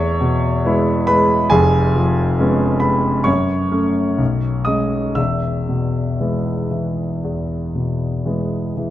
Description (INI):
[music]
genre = classical, romantic nocturne for solo piano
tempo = 58-70 BPM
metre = 4/4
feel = rubato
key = E major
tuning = A4 = 442 Hz
[part]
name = clear concert grand piano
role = solo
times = 0.0-8.9 s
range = E1 to E6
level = -16 LUFS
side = equal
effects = none
[sound]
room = light reverb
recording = close, detailed microphones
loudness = -16 LUFS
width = side -13 dB against mid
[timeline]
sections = 0.0-8.9 A section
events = none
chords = 0.0 E; 1.5 C#7/E#; 3.3 F#m; 4.2 B69; 5.2 E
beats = 0.63 | 1.50 2.39 3.27 4.20 | 5.18 6.21 7.24 8.25